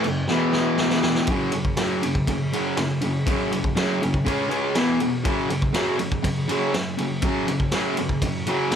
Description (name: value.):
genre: garage rock duo or trio.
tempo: 121 BPM.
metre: 4/4.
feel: straight.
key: unclear.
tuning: A4 = 440 Hz.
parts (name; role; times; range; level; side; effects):
fuzz guitar; riff; 0.0-8.8 s; E2 to C#4; -22 LUFS; equal; distortion.
raw garage drum kit; drums; 0.0-8.8 s; crash cymbal, kick drum, ride cymbal, snare drum; -26 LUFS; equal; none.
room: moderate small room reverb, RT60 0.6 s.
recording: none.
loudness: -20 LUFS.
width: side -8 dB against mid.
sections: 0.0-1.3 A section; 1.3-8.8 B section.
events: drum fill 0.3-1.3.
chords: 0.3 E5; 1.3 F#5; 4.3 C#5; 4.8 E5; 5.3 F#5.